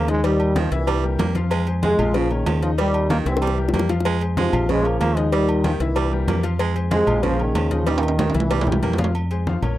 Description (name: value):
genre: latin, salsa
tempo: 189 BPM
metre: 4/4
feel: straight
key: F minor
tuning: A4 = 439 Hz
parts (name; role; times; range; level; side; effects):
- warm trombone section; melody; 0.0-9.0 s; G2 to C4; -22 LUFS; equal; none
- raspy baritone saxophone; second line; 0.0-9.0 s; Db3 to Bb3; -27 LUFS; right 9 dB; none
- bright upright piano; accompaniment; 0.0-9.8 s; Eb3 to F5; -28 LUFS; left 7 dB; none
- deep dub fingered electric bass; bass; 0.0-9.8 s; Bb1 to F2; -22 LUFS; equal; none
- cowbell and bongos; percussion; 0.1-9.1 s; none; -30 LUFS; left 5 dB; none
- agogo bells and timbales; percussion; 0.2-9.8 s; none; -30 LUFS; right 3 dB; none
- congas; percussion; 0.2-9.8 s; none; -28 LUFS; left 1 dB; none
room: light reverb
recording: dry, close 1970s-style studio recording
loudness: -18 LUFS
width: side -14 dB against mid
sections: 0.0-9.1 A section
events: drum fill 3.3-4.1, 7.9-9.1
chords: 0.2 Eb; 0.9 C7; 1.5 Fm; 2.1 Bbm; 2.8 Eb; 3.4 C7; 4.1 Fm; 4.7 Bbm; 5.3 Eb; 6.0 C7; 6.6 Fm; 7.2 Bbm; 7.9 Eb; 8.5 C7; 9.1 Fm